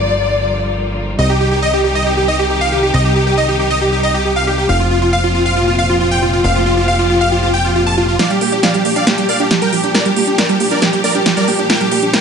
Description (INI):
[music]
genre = uplifting trance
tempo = 137 BPM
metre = 4/4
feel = straight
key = G minor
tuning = A4 = 440 Hz
[part]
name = dark studio violin section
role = second line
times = 0.0-1.1 s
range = D5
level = -18 LUFS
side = left 5 dB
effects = tape echo
[part]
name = bright studio string section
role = sustained chords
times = 0.0-12.2 s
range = Bb2 to G4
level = -20 LUFS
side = equal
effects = low-pass filter
[part]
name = plucky analog bass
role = bass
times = 0.0-8.2 s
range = F1 to C2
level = -18 LUFS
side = equal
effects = none
[part]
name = supersaw chords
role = melody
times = 1.2-12.2 s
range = F4 to A5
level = -15 LUFS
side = right 1 dB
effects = digital delay
[part]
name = analog pluck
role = second line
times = 1.2-8.2 s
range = F4 to A5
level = -21 LUFS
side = left 2 dB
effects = chorus, tape echo
[part]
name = analog pluck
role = arpeggios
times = 8.2-12.2 s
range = F3 to D4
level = -18 LUFS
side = right 5 dB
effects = chorus, cassette tape, tape echo
[part]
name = big-room dance drum kit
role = drums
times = 8.2-12.2 s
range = hi-hat, snare drum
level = -16 LUFS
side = equal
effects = none
[sound]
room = light reverb, digital ambience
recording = nothing above 10.9 kHz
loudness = -12 LUFS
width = side -6 dB against mid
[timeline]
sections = 0.0-8.2 A section; 8.2-12.2 B section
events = build-up 8.2-12.2; drum fill 8.2-12.2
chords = 0.0 Gm7; 1.2 Cm; 4.7 Fsus4; 8.2 Gm7